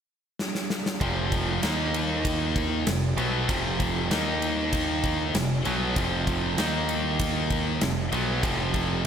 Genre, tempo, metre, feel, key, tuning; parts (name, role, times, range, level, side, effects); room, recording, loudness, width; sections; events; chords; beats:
classic rock; 97 BPM; 4/4; straight; A4 = 440 Hz
huge arena drum kit; drums; 0.4-8.9 s; kick drum, ride cymbal, snare drum; -29 LUFS; equal
cranked stack guitar; riff; 1.0-9.1 s; F2 to Eb4; -29 LUFS; right 7 dB; overdrive
tight distorted guitar; riff; 1.0-9.1 s; F2 to Eb4; -29 LUFS; left 10 dB; distortion
growling picked electric bass; bass; 1.0-9.0 s; F1 to Eb2; -30 LUFS; left 1 dB; overdrive
light reverb, studio ambience; -24 LUFS; side -8 dB against mid
0.0-1.0 A section; 1.0-9.1 B section
drum fill 0.4-1.0
0.0 N.C.; 1.0 F5; 1.6 Eb5; 2.9 F5; 4.1 Eb5; 5.3 F5; 6.6 Eb5; 7.8 F5
0.39 | 1.01 1.63 2.25 2.87 | 3.49 4.11 4.73 5.35 | 5.96 6.58 7.20 7.82 | 8.44 9.06